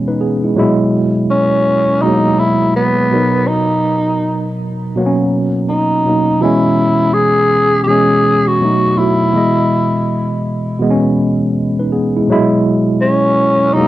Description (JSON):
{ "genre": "hip hop", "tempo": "82 BPM", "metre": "4/4", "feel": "swing 62% on 16ths", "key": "B major", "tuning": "A4 = 440 Hz", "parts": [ { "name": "tine electric piano", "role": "accompaniment", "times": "0.0-13.9 s", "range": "A#2 to D#5", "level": "-14 LUFS", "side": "right 1 dB", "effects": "medium stereo tremolo, low-pass filter" }, { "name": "growling tenor saxophone", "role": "melody", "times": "1.3-13.9 s", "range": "B3 to G#4", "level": "-14 LUFS", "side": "equal", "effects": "low-pass filter" } ], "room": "moderate studio reverb, RT60 0.6 s", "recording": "dark, warm production", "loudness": "-11 LUFS", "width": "side -15 dB against mid", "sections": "0.0-13.9 A section", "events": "none", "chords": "0.0 Emaj7; 0.6 F#9sus4; 3.1 Bmaj7; 6.4 C#m7; 8.6 B7; 9.3 Emaj7; 12.3 F#9sus4" }